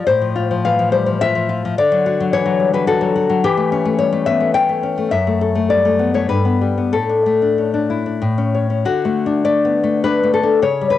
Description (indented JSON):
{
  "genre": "romantic piece for solo classical guitar",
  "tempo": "91-112 BPM",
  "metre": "3/4",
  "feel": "rubato",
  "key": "D major",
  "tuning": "A4 = 441 Hz",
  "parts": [
    { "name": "nylon-string guitar", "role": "solo", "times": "0.0-11.0 s", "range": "F#2 to G5", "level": "-14 LUFS", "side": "left 3 dB", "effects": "cassette tape" }
  ],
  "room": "moderate spring reverb, RT60 1.1 s, studio ambience",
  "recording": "home recording on cassette",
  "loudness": "-14 LUFS",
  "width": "side -12 dB against mid",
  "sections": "0.0-8.9 A section; 8.9-11.0 B section",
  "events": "none",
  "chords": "0.1 F/A; 1.8 D; 3.4 A7/E; 5.1 Gmaj13/F#; 6.3 G; 6.9 D5/A; 8.2 A; 8.9 D"
}